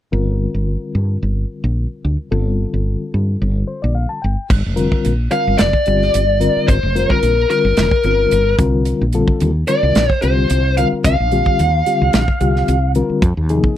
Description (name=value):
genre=electric jazz fusion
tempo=110 BPM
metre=4/4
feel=swing 53% on 16ths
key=G minor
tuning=A4 = 444 Hz
part: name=reed electric piano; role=accompaniment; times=0.1-13.8 s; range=C3 to A5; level=-20 LUFS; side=left 4 dB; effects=harmonic tremolo
part: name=woody fretless electric bass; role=bass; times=0.1-13.6 s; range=F1 to G2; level=-17 LUFS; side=equal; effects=none
part: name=modern studio drum kit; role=drums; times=4.5-13.8 s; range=crash cymbal, hi-hat, kick drum, snare drum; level=-18 LUFS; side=right 1 dB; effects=none
part: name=biting lead guitar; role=melody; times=5.3-12.9 s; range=Bb4 to F5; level=-16 LUFS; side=left 1 dB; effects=overdrive, slapback echo
room=little or no reverb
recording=dry, close 1970s-style studio recording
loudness=-14 LUFS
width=side -11 dB against mid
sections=0.1-4.5 A section; 4.5-13.8 B section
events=reed electric piano fill 3.4-4.5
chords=0.1 Gm11; 4.2 N.C.; 4.5 Gm7; 8.6 C9sus4; 13.2 Fm11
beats=| 0.12 0.67 1.22 1.76 | 2.31 2.86 3.41 3.95 | 4.50 5.05 5.59 6.14 | 6.68 7.23 7.77 8.32 | 8.86 9.41 9.95 10.50 | 11.04 11.59 12.13 12.68 | 13.22 13.77